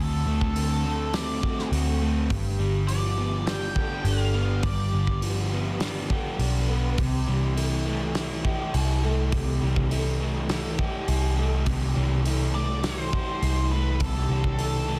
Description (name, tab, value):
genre	rock, shoegaze and dream pop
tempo	103 BPM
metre	4/4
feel	straight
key	unclear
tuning	A4 = 440 Hz
part	octave-fuzz lead guitar	melody	0.0-5.2, 12.5-15.0 s	A4 to G5	-36 LUFS	equal	distortion, slapback echo
part	fingerpicked twelve-string acoustic guitar	arpeggios	0.0-15.0 s	F#4 to B4	-39 LUFS	equal	lush chorus, slapback echo
part	overdriven semi-hollow guitar	riff	0.0-15.0 s	G2 to G4	-33 LUFS	equal	subtle chorus
part	raw garage guitar	riff	0.0-15.0 s	G2 to A4	-37 LUFS	equal	overdrive, reverse reverb
part	vintage muted picked electric bass	bass	0.0-15.0 s	G1 to D2	-28 LUFS	equal	none
part	loose indie drum kit	drums	0.4-14.7 s	hi-hat, kick drum, snare drum	-34 LUFS	equal	none
room	studio reverb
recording	dense, heavily limited modern master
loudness	-26 LUFS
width	mono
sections	0.0-15.0 A section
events	none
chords	0.0 D7; 2.3 G7; 7.0 C6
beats	0.56 1.14 1.72 | 2.31 2.89 3.47 4.06 | 4.64 5.22 5.81 6.39 | 6.98 7.57 8.15 8.74 | 9.32 9.91 10.50 11.08 | 11.67 12.25 12.84 13.42 | 14.00 14.59